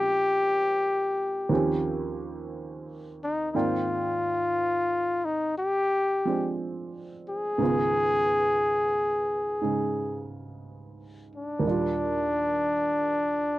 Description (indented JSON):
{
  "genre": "jazz ballad",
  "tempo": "59 BPM",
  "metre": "4/4",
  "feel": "swing 66% on 8ths",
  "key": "Eb major",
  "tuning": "A4 = 440 Hz",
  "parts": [
    { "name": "mellow trumpet", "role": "melody", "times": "0.0-13.6 s", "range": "D4 to Ab4", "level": "-25 LUFS", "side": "left 1 dB", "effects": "none" },
    { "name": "warm upright piano", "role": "accompaniment", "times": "0.0-13.6 s", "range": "Db2 to G5", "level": "-30 LUFS", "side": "right 3 dB", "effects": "none" }
  ],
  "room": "little or no reverb",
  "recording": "dry, close 1970s-style studio recording",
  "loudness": "-24 LUFS",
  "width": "side -16 dB against mid",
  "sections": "0.0-13.6 A section",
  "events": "none",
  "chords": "0.0 Bbm7; 1.5 Eb13; 3.5 Abmaj9#11; 7.6 Db9; 11.6 Ebmaj9"
}